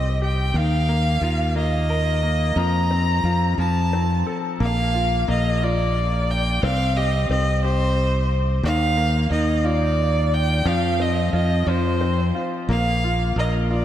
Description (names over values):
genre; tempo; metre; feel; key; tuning
six-eight pop ballad; 59 BPM (dotted quarters); 6/8; straight; Bb major; A4 = 439 Hz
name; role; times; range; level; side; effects
warm violin; melody; 0.0-13.8 s; C5 to Bb5; -24 LUFS; right 1 dB; diffuse ambient delay
bright grand piano; accompaniment; 0.0-13.8 s; Eb3 to Bb4; -27 LUFS; left 3 dB; none
modern bright fingered electric bass; bass; 0.0-13.8 s; Bb1 to F2; -21 LUFS; equal; none
room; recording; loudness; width
moderate lush hall reverb, RT60 3.0 s; dreamy mix soaked in reverb; -18 LUFS; side -11 dB against mid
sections
0.0-4.6 A section; 4.6-13.8 B section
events
none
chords
0.0 Cm; 0.6 Ebsus2; 2.6 Fsus4; 3.6 F; 4.6 Bb; 6.6 C5; 8.6 Ebsus2; 10.7 F5; 12.7 Bb5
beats
| 0.55 1.55 | 2.56 3.58 | 4.60 5.62 | 6.63 7.63 | 8.64 9.65 | 10.66 11.67 | 12.69 13.70